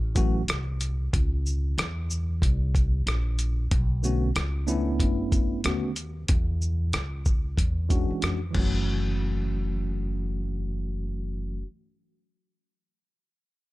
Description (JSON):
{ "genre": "hip hop, jazz-hop", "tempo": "93 BPM", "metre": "4/4", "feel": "swing 63% on 16ths", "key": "F# minor", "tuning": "A4 = 441 Hz", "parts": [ { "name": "upright bass", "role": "bass", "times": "0.0-11.6 s", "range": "F#1 to E#2", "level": "-27 LUFS", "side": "equal", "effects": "none" }, { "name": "tine electric piano", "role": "accompaniment", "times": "0.1-11.7 s", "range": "D3 to F#4", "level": "-30 LUFS", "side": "left 1 dB", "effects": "medium stereo tremolo, low-pass filter" }, { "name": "dusty soul sampler-style drum kit", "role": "drums", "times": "0.2-8.7 s", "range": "crash cymbal, hi-hat, kick drum, rim click, shaker", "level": "-26 LUFS", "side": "equal", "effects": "none" } ], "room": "little or no reverb", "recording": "lossy compression artefacts", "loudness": "-24 LUFS", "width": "side -18 dB against mid", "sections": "0.0-8.9 A section; 8.9-11.4 B section", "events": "filter sweep on tine electric piano 0.0-8.9", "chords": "0.0 F#m7; 1.1 C#m; 2.4 A#sus2; 3.7 Bm9; 6.3 E13; 8.5 F#m7" }